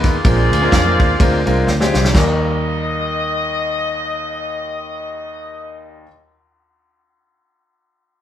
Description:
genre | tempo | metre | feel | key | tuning
uptempo gospel | 126 BPM | 4/4 | swing 57% on 8ths | Eb major | A4 = 440 Hz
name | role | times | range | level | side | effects
mellow horn section | melody | 0.0-6.0 s | F4 to Eb5 | -21 LUFS | left 2 dB | none
clear baby grand piano | accompaniment | 0.0-6.1 s | Eb2 to Cb5 | -21 LUFS | left 1 dB | none
vintage muted fingered electric bass | bass | 0.0-6.0 s | Bb1 to F2 | -19 LUFS | equal | none
warm soul drum kit | drums | 0.0-2.3 s | china cymbal, kick drum, ride cymbal, snare drum | -17 LUFS | equal | none
room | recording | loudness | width
wet studio reverb, RT60 0.8 s | band playing live in one room | -14 LUFS | side -10 dB against mid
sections
0.0-2.1 A section; 2.1-5.9 B section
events
drum fill 1.7-2.1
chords
0.2 Bb9; 2.1 Eb

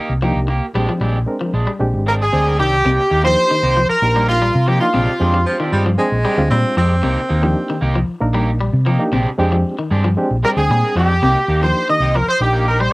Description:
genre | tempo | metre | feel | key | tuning
afrobeat | 115 BPM | 4/4 | straight | C minor | A4 = 439 Hz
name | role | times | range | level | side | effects
electric guitar at the edge of break-up | stabs | 0.0-12.8 s | Ab3 to G4 | -24 LUFS | right 2 dB | wide subtle chorus
hollow-body short-scale fingered electric bass | bass | 0.1-12.9 s | Ab1 to C3 | -17 LUFS | equal | none
barky reed electric piano | accompaniment | 0.2-12.8 s | Ab3 to G5 | -22 LUFS | right 1 dB | overdrive, fast tremolo
electric guitar at the edge of break-up | arpeggios | 0.2-12.9 s | C3 to G3 | -23 LUFS | left 2 dB | spring reverb
brilliant horn section | melody | 2.1-5.8, 10.4-12.9 s | F4 to Eb5 | -16 LUFS | equal | analog delay
breathy trumpet | second line | 2.1-5.8, 10.5-12.9 s | F4 to Eb5 | -25 LUFS | right 1 dB | none
clear baritone saxophone | second line | 5.5-7.8 s | F3 to C4 | -20 LUFS | right 1 dB | none
room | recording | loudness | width
light reverb | home recording on cassette | -14 LUFS | side -22 dB against mid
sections
0.0-2.9 A section; 2.9-12.9 B section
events
reed electric piano fill 2.1-2.9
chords
0.0 Cm7; 0.8 Bb13; 2.9 Cm7; 4.9 Bb13; 7.0 Cm7; 9.1 Bb13; 11.2 Cm7

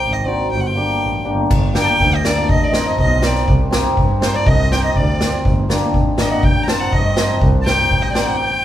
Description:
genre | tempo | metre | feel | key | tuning
klezmer | 122 BPM | 2/4 | straight | unclear | A4 = 444 Hz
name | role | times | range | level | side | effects
warm violin | melody | 0.0-8.6 s | C5 to Bb5 | -21 LUFS | left 1 dB | none
clear double bass | bass | 0.0-8.2 s | G1 to G2 | -20 LUFS | equal | none
cimbalom | accompaniment | 0.3-8.3 s | Bb3 to Bb4 | -20 LUFS | left 1 dB | none
street-band drum kit | drums | 1.5-8.3 s | crash cymbal, kick drum, snare drum | -17 LUFS | equal | none
musette accordion | second line | 1.7-8.6 s | C5 to A5 | -23 LUFS | right 1 dB | none
room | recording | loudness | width
moderate small room reverb, RT60 0.5 s | band playing live in one room | -14 LUFS | side -12 dB against mid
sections
0.0-1.5 A section; 1.5-8.6 A section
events
none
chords
0.0 Cm; 0.5 Gm; 2.5 Adim; 3.5 Cm; 5.4 Gm; 6.4 Adim

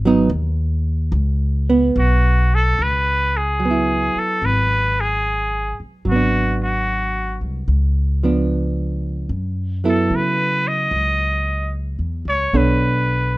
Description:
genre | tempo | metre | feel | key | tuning
jazz ballad | 74 BPM | 4/4 | swing 67% on 8ths | C# minor | A4 = 441 Hz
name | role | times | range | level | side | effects
upright bass | bass | 0.0-13.4 s | G#1 to C#3 | -20 LUFS | equal | none
hollow-body jazz guitar | accompaniment | 0.1-13.4 s | E#3 to C#5 | -20 LUFS | right 3 dB | none
trumpet with straight mute | melody | 2.0-13.4 s | F#4 to D#5 | -20 LUFS | equal | none
room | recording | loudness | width
little or no reverb | close, detailed microphones | -16 LUFS | side -19 dB against mid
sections
0.0-2.8 A section; 2.8-13.4 B section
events
muted trumpet solo 0.0-2.8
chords
0.0 G#m7; 1.1 F#sus4; 2.8 C#m7; 6.1 G#m7b5; 7.7 C#7b9; 9.3 F#m7; 12.5 Bm9

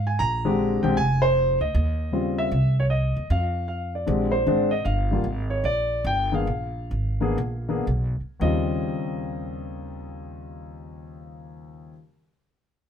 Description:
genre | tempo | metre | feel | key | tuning
jazz | 108-155 BPM | 4/4 | swing 65% on 8ths | Eb mixolydian | A4 = 440 Hz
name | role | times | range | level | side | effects
dark concert grand piano | melody | 0.0-11.9 s | Eb2 to Bb5 | -25 LUFS | left 1 dB | none
upright bass | bass | 0.0-11.9 s | F1 to Ab2 | -26 LUFS | right 1 dB | none
room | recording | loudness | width
light reverb | minimal, uncompressed stereo recording | -22 LUFS | side -8 dB against mid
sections
0.0-4.8 A section; 4.8-8.4 B section; 8.4-12.9 C section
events
slowing down 4.8-8.4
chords
0.2 Bb13; 1.7 Eb13; 2.5 Cm; 3.3 N.C.; 4.1 Bb13; 4.8 Gm7; 6.5 Bb7(no3); 8.4 Eb13

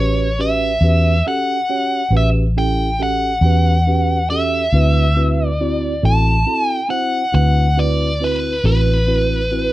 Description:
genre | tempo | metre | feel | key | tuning
slow blues | 46 BPM (dotted quarters) | 12/8 | straight | A mixolydian | A4 = 440 Hz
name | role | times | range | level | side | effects
biting lead guitar | melody | 0.0-9.7 s | B4 to A5 | -19 LUFS | equal | overdrive
mellow tine electric piano | accompaniment | 0.0-9.7 s | C4 to D5 | -22 LUFS | right 3 dB | slow stereo tremolo
vintage muted fingered electric bass | bass | 0.0-9.7 s | A1 to E2 | -16 LUFS | equal | none
room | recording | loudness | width
light reverb | dark, warm production | -14 LUFS | side -16 dB against mid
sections
0.0-9.7 A section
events
none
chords
0.0 A13; 4.7 D13

